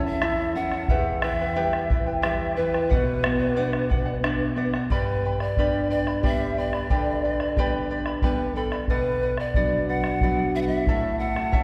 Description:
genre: andean folk, Andean ensemble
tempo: 90 BPM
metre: 3/4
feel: straight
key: unclear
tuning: A4 = 445 Hz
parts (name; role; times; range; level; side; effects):
- polished pan flute; melody; 0.0-11.6 s; A4 to F#5; -30 LUFS; equal; none
- charango; accompaniment; 0.0-11.6 s; E4 to B5; -33 LUFS; equal; none
- nylon-string guitar; accompaniment; 0.0-11.6 s; E2 to E4; -30 LUFS; equal; none
- bombo; percussion; 0.2-11.6 s; none; -29 LUFS; equal; none
room: wet concert hall reverb, RT60 2.4 s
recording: heard from further back in the room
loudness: -24 LUFS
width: mono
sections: 0.0-4.9 A section; 4.9-11.6 B section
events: none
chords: 0.0 A; 0.9 Em; 2.9 Bm; 4.9 G; 8.9 Bm; 10.9 A

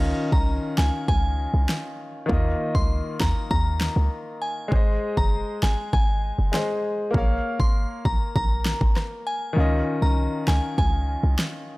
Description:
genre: dancehall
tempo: 99 BPM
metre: 4/4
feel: straight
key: unclear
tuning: A4 = 440 Hz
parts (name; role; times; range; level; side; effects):
- clear grand piano; accompaniment; 0.0-11.8 s; Eb3 to F5; -28 LUFS; left 1 dB; sidechain pumping
- short 808-style bass; bass; 0.0-11.4 s; Gb1 to Eb2; -23 LUFS; equal; none
- glassy synth bell; melody; 0.3-11.2 s; Ab5 to C6; -30 LUFS; left 1 dB; chorus, analog delay
- pop drum kit; drums; 0.3-11.5 s; kick drum, rim click, snare drum; -25 LUFS; equal; none
room: little or no reverb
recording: dry, gritty hardware recording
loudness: -21 LUFS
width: side -21 dB against mid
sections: 0.0-11.8 A section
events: kick muted 9.6-10.2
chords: 0.0 Dbadd9; 2.3 Ebsus2; 4.7 Ab; 7.1 Bbm; 9.6 Dbadd9

